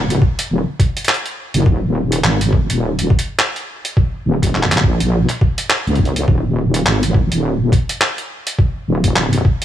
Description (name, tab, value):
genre	glitch hop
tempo	104 BPM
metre	4/4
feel	swing 58% on 16ths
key	unclear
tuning	A4 = 440 Hz
part	wobble bass	bass	0.0-9.4 s	Eb1 to Db2	-15 LUFS	equal	chorus
part	boom bap sampler-style drum kit	drums	0.1-9.6 s	handclaps, hi-hat	-19 LUFS	equal	none
part	electronic kick drum	drums	0.2-9.6 s	none	-15 LUFS	equal	none
room	digital ambience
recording	none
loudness	-14 LUFS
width	side -11 dB against mid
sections	0.0-9.6 A section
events	none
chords	none